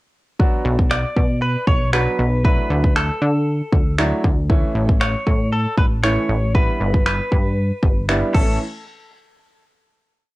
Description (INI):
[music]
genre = dance-pop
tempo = 117 BPM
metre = 4/4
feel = straight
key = unclear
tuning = A4 = 441 Hz
[part]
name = clear baby grand piano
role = accompaniment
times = 0.4-8.6 s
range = E3 to F#4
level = -24 LUFS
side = right 1 dB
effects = sidechain pumping, cassette tape
[part]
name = pop drum kit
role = drums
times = 0.4-8.5 s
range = crash cymbal, finger snaps, kick drum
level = -18 LUFS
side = equal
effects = overdrive
[part]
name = plucky analog bass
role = bass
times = 0.6-8.6 s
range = G1 to D3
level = -20 LUFS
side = equal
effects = sidechain pumping
[part]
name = direct-recorded clean electric guitar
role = melody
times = 0.9-8.6 s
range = A4 to D5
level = -24 LUFS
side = equal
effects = cassette tape, analog delay
[sound]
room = light reverb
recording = home recording on cassette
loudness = -16 LUFS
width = side -19 dB against mid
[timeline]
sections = 0.4-8.6 verse; 8.6-10.4 final hit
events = none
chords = 0.4 Bm; 2.4 Dadd9; 4.5 A; 6.5 G6; 8.3 A; 8.6 N.C.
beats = | 0.40 0.91 1.42 1.93 | 2.45 2.96 3.47 3.98 | 4.50 5.01 5.52 6.04 | 6.55 7.06 7.58 8.09